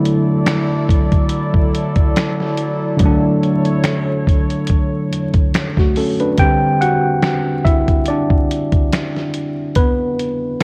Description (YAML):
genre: lo-fi hip hop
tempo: 71 BPM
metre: 4/4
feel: swing 55% on 16ths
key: D major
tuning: A4 = 440 Hz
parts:
  - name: tine electric piano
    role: accompaniment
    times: 0.0-10.6 s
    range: D3 to G5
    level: -19 LUFS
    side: equal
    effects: cassette tape, low-pass filter
  - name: warbly tape-like pad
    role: sustained chords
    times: 0.0-6.3 s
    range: F#3 to D5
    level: -26 LUFS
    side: equal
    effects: chorus, built-in reverb, low-pass filter
  - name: dusty soul sampler-style drum kit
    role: drums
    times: 0.1-10.6 s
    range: finger snaps, hi-hat, kick drum, snare drum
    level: -18 LUFS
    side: equal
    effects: none
room: light reverb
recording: worn, warbling old tape, cassette tape, vinyl crackle, warbly pitch drift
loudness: -16 LUFS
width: mono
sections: 0.0-6.4 A section; 6.4-10.6 B section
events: tine electric piano solo 6.4-10.6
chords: 0.0 E9sus4; 6.4 D9sus4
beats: 0.47 1.31 2.16 | 3.00 3.85 4.69 5.54 | 6.38 7.23 8.07 8.92 | 9.76 10.61